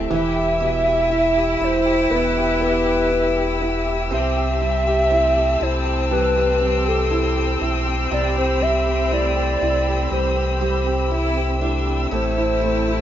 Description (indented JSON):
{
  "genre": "pop ballad",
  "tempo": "60 BPM",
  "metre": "4/4",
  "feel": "straight",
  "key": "unclear",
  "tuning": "A4 = 440 Hz",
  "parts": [
    { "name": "bright chamber cello section", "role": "second line", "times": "0.0-13.0 s", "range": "C4 to E4", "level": "-25 LUFS", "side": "left 2 dB", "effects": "none" },
    { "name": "warm concert grand piano", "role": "accompaniment", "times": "0.0-13.0 s", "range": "B2 to G4", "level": "-26 LUFS", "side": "right 4 dB", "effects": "none" },
    { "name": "warm studio string section", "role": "sustained chords", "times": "0.0-13.0 s", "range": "C4 to E6", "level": "-27 LUFS", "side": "left 2 dB", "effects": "none" },
    { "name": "picked acoustic archtop guitar", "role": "arpeggios", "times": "0.0-13.0 s", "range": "A2 to A4", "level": "-30 LUFS", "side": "equal", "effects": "ping-pong delay" },
    { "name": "sub bass with octave", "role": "bass", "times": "0.0-13.0 s", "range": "E1 to C2", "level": "-24 LUFS", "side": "equal", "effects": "none" },
    { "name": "hollow clarinet-like synth lead", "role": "melody", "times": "0.1-13.0 s", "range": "A4 to E5", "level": "-21 LUFS", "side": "equal", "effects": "chorus" }
  ],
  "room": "light reverb",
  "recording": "rough home demo mix, nothing above 7.6 kHz",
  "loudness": "-17 LUFS",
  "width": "side -11 dB against mid",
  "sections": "0.0-13.0 A section",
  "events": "none",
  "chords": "0.1 Em; 4.1 C6; 12.1 Am7"
}